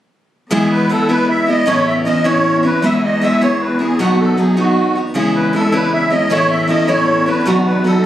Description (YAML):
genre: celtic folk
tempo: 104 BPM (dotted quarters)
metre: 6/8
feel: straight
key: E major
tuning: A4 = 439 Hz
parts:
  - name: musette accordion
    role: melody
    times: 0.5-8.0 s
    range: F#4 to E5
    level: -17 LUFS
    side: right 1 dB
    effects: none
  - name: picked steel-string acoustic guitar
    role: accompaniment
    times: 0.5-8.0 s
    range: A2 to G#4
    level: -14 LUFS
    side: equal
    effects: none
  - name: rich cello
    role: drone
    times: 0.5-8.1 s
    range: E2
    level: -23 LUFS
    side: left 2 dB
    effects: none
room: light reverb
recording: recorded on a phone in the room, club reverb, compression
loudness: -12 LUFS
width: side -12 dB against mid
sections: 0.5-8.1 A section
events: none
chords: 0.5 E; 1.7 Aadd9; 2.8 E; 4.0 B; 5.1 C#m; 6.3 A; 7.5 B